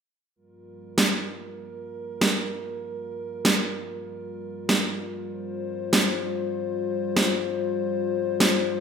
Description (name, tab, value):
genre	glitch hop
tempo	97 BPM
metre	4/4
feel	swing 63% on 16ths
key	G minor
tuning	A4 = 445 Hz
part	dark analog pad	sustained chords	0.4-8.8 s	G3 to C5	-29 LUFS	left 4 dB	chorus
part	electronic snare drum	drums	1.0-8.6 s	none	-22 LUFS	right 1 dB	studio reverb, gated reverb
room	wet plate reverb, RT60 1.3 s, digital ambience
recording	bright 1980s-style digital production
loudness	-23 LUFS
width	side -6 dB against mid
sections	0.4-8.8 A section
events	none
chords	0.4 Gm7